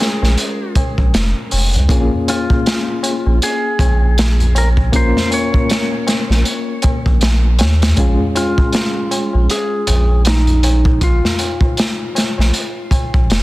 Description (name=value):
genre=trip hop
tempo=79 BPM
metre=4/4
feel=swing 59% on 16ths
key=unclear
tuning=A4 = 441 Hz
part: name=clean lap steel guitar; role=melody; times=0.0-13.3 s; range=Eb4 to Db5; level=-22 LUFS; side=left 1 dB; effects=tape echo
part: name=reed electric piano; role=accompaniment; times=0.0-11.0 s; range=Ab3 to Bb4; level=-21 LUFS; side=left 2 dB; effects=overdrive, fast tremolo, tape echo
part: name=crunchy breakbeat drum kit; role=drums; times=0.0-13.4 s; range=hi-hat, kick drum, snare drum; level=-17 LUFS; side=equal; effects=none
part: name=tabla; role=percussion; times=0.0-13.4 s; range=none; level=-26 LUFS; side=left 1 dB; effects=none
part: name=soft dub sub bass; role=bass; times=0.2-13.4 s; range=F1 to Eb2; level=-13 LUFS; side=equal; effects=none
room=small room ambience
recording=dense, heavily limited modern master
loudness=-13 LUFS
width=side -18 dB against mid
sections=0.0-13.4 A section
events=none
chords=0.0 Db/Bb; 1.9 Bbm7; 8.0 Db/Bb